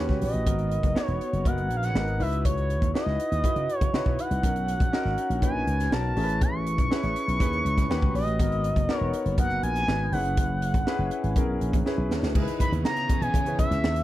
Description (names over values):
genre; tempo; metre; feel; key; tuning
polished 1980s jazz-funk pop; 121 BPM; 4/4; straight; unclear; A4 = 441 Hz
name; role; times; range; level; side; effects
expressive synth lead; melody; 0.0-14.0 s; C#5 to C#6; -29 LUFS; equal; chorus, slapback echo
warm grand piano; accompaniment; 0.0-14.0 s; B3 to C#5; -31 LUFS; left 2 dB; analog chorus
slap bass with an envelope filter; bass; 0.0-14.0 s; E1 to C#3; -28 LUFS; equal; none
crisp fusion drum kit; drums; 0.1-14.0 s; crash cymbal, hi-hat, kick drum, snare drum; -27 LUFS; equal; none
rich chamber string section; sustained chords; 12.4-14.0 s; C#3 to C#4; -34 LUFS; equal; none
congas; percussion; 12.5-14.0 s; none; -40 LUFS; right 4 dB; none
room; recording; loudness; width
little or no reverb; none; -23 LUFS; side -14 dB against mid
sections
0.0-12.4 A section; 12.4-14.0 B section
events
drum fill 11.9-12.4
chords
0.5 G#m9; 2.2 C#m11; 4.4 Bmaj9; 6.2 Amaj7; 7.9 D#7alt; 8.4 G#m9; 10.1 F#9sus4; 12.4 C#m9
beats
| 0.46 0.96 1.46 1.95 | 2.45 2.94 3.44 3.94 | 4.43 4.93 5.42 5.92 | 6.41 6.91 7.40 7.90 | 8.39 8.89 9.38 9.88 | 10.37 10.87 11.36 11.86 | 12.35 12.85 13.34 13.84